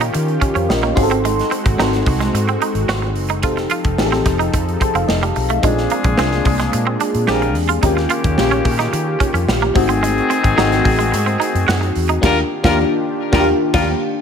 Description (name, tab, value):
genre	polished 1980s jazz-funk pop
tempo	109 BPM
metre	4/4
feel	straight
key	Eb major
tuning	A4 = 440 Hz
part	FM electric piano with soft pad layer	accompaniment	0.0-14.2 s	A3 to C6	-19 LUFS	left 2 dB	wide subtle chorus
part	warm analog pad	sustained chords	0.0-14.2 s	Eb3 to A4	-26 LUFS	right 1 dB	chorus
part	twangy electric guitar	riff	0.0-12.2 s	G3 to G4	-23 LUFS	right 7 dB	analog chorus
part	vintage muted fingered electric bass	bass	0.0-13.9 s	F1 to Eb3	-21 LUFS	equal	none
part	modern studio drum kit	drums	0.0-13.9 s	crash cymbal, hi-hat, kick drum, snare drum	-21 LUFS	equal	gated reverb
part	clear horn section	second line	5.6-13.9 s	Db3 to Bb4	-21 LUFS	left 4 dB	ping-pong delay
room	light reverb, small room ambience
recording	none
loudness	-14 LUFS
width	side -7 dB against mid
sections	0.0-14.2 A section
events	FM electric piano fill 0.4-1.2, 4.5-5.6; band accent 12.2-14.2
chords	0.0 Eb9; 1.0 Ab7b9; 3.4 F7; 5.6 Bb9; 7.3 Bb13; 7.8 Eb9; 9.8 Ab7b9; 12.2 Ebmaj9